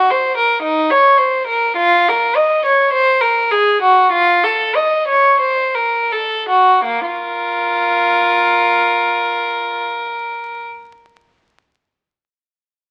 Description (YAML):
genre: classical, baroque-style suite movement for unaccompanied violin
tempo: 39-58 BPM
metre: 4/4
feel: rubato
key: Bb minor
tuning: A4 = 441 Hz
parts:
  - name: rich violin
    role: solo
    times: 0.0-10.6 s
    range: Bb3 to Eb5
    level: -15 LUFS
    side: equal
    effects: none
room: moderate stone room reverb, RT60 1.1 s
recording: very old 78 rpm record, vinyl crackle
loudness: -15 LUFS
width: mono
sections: 0.0-6.8 A section; 6.8-12.3 B section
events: slowing down 0.0-6.8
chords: 0.0 Cm; 1.8 F7sus4; 4.1 F7; 6.8 Bb5